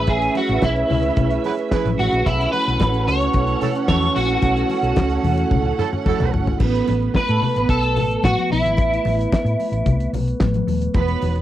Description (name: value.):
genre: disco.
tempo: 110 BPM.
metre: 4/4.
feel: straight.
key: unclear.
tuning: A4 = 440 Hz.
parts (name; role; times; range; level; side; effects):
electric guitar at the edge of break-up; melody; 0.0-10.1 s; E4 to C#5; -21 LUFS; equal; ensemble chorus, cassette tape.
warm studio string section; second line; 0.0-11.4 s; A3 to F#5; -24 LUFS; right 7 dB; cassette tape.
glass harmonica; sustained chords; 0.0-11.4 s; G#3 to C#5; -26 LUFS; equal; cassette tape.
hollow-body short-scale fingered electric bass; bass; 0.0-11.4 s; D#1 to A2; -22 LUFS; equal; none.
damped 70s drum kit; drums; 0.1-11.4 s; crash cymbal, handclaps, hi-hat, kick drum, snare drum, toms; -21 LUFS; equal; cassette tape.
congas; percussion; 0.1-11.3 s; none; -28 LUFS; left 7 dB; none.
warm horn section; stabs; 1.4-6.3 s; E4 to B4; -24 LUFS; right 8 dB; cassette tape.
room: moderate booth ambience, RT60 0.2 s.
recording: home recording on cassette.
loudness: -17 LUFS.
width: side -13 dB against mid.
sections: 0.0-6.6 A section; 6.6-11.4 B section.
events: drum fill 5.5-6.6.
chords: 0.0 Amaj9; 2.3 B9sus4; 6.6 Asus2.